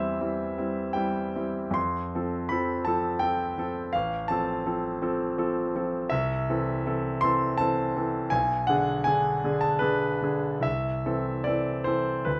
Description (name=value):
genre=classical, romantic character piece for solo piano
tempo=69-85 BPM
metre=3/4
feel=rubato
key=A minor from 6.1 s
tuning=A4 = 440 Hz
part: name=bright concert grand piano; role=solo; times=0.0-12.4 s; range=A1 to C6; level=-27 LUFS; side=equal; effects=none
room=moderate large studio reverb, RT60 1.2 s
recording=none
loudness=-27 LUFS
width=mono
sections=0.0-12.4 A section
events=none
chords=0.0 C/E; 1.8 F; 3.9 F/A; 6.1 Am/C; 8.3 G#dim/B; 10.6 Am/C